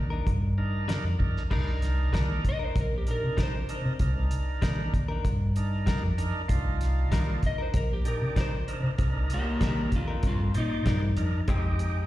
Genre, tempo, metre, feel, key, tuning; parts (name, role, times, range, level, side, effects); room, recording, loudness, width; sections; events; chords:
straight-eighth soul blues; 96 BPM; 4/4; straight; C minor; A4 = 440 Hz
vintage muted fingered electric bass; bass; 0.0-12.0 s; Bb1 to C3; -27 LUFS; equal
direct-recorded clean electric guitar; stabs; 0.1-11.7 s; G3 to Bb4; -37 LUFS; left 5 dB; spring reverb, plate reverb, slapback echo
cloth-damped thuddy drum kit; drums; 0.3-11.9 s; crash cymbal, hi-hat, kick drum, snare drum; -28 LUFS; equal
overdriven tonewheel organ; accompaniment; 0.6-12.1 s; Ab3 to D5; -36 LUFS; right 4 dB; slow rotary speaker, plate reverb, slapback echo
electric slide guitar; melody; 2.5-12.1 s; Bb3 to Eb5; -33 LUFS; left 1 dB; plate reverb, slapback echo
little or no reverb; live gig heard through the venue's PA, recital hall reverb; -25 LUFS; side -15 dB against mid
0.0-1.5 A section; 1.5-12.1 B section
electric slide guitar solo 1.5-12.1
0.0 Cm9 (rootless); 1.5 Cm9; 11.5 Fm9